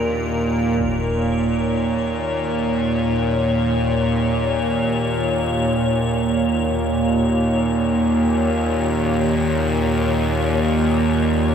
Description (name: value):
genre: dark ambient drone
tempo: free time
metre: none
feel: none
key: unclear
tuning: A4 = 440 Hz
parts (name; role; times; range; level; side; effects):
- sweeping resonant pad; sustained chords; 0.0-0.8 s; none; barely audible; none; none
- bowed-like drone; drone; 0.0-11.5 s; Eb2 to Bb2; -18 LUFS; right 1 dB; built-in reverb
- icy glass pad; texture; 0.0-11.5 s; Bb4 to Db5; -25 LUFS; left 3 dB; chorus, built-in reverb
- impact; percussion; 0.8-1.0 s; none; -35 LUFS; left 1 dB; low-pass filter on sfx
room: wet huge ambient reverb, RT60 8.4 s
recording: none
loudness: -17 LUFS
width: side -8 dB against mid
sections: 0.8-11.5 A section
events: fade-in on impacts and reversed cymbals 0.8-11.5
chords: 0.0 Bb; 0.8 Eb5